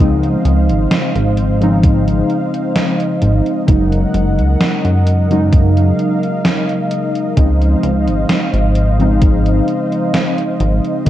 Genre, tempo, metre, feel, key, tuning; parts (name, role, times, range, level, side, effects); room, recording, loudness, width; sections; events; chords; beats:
vaporwave; 65 BPM; 4/4; straight; A4 = 438 Hz
warbly lo-fi synth keys; accompaniment; 0.0-11.1 s; Db3 to Eb4; -16 LUFS; equal; wide subtle chorus, analog delay
lush unison pad; sustained chords; 0.0-11.1 s; Bb4 to Gb5; -22 LUFS; right 1 dB; chorus
chorused synth bass; bass; 0.0-11.1 s; Gb1 to Gb2; -14 LUFS; equal
gated 80s digital drum machine; drums; 0.2-11.1 s; hi-hat, snare drum; -19 LUFS; right 1 dB; gated reverb, gated reverb snare
electronic kick drum; drums; 1.8-11.1 s; -12 LUFS; equal
light reverb; dark, warm production, cassette tape; -12 LUFS; side -13 dB against mid
0.0-11.1 A section
0.0 Dbmaj9; 3.7 Gb6; 7.4 Dbmaj9
0.91 1.83 2.76 | 3.68 4.60 5.53 6.45 | 7.37 8.30 9.22 10.14 | 11.06